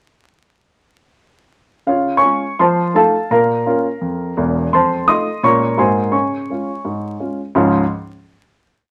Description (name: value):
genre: jazz, stride piano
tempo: 169 BPM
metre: 4/4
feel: swing 59% on 8ths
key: Db major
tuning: A4 = 440 Hz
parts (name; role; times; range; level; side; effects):
- dark grand piano; solo; 1.9-7.8 s; Fb1 to Eb6; -16 LUFS; equal; none
room: moderate small room reverb, RT60 0.6 s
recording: vinyl crackle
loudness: -17 LUFS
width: mono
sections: 1.9-7.6 A section; 7.6-8.9 final chord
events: none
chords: 1.9 Db; 2.6 F7; 3.3 Bbm; 4.7 F7; 5.4 Bbm7; 5.8 Ab9; 6.1 Db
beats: | 1.88 2.24 2.59 2.95 | 3.30 3.66 4.01 4.37 | 4.72 5.08 5.43 5.79 | 6.14 6.49 6.85 7.20 | 7.56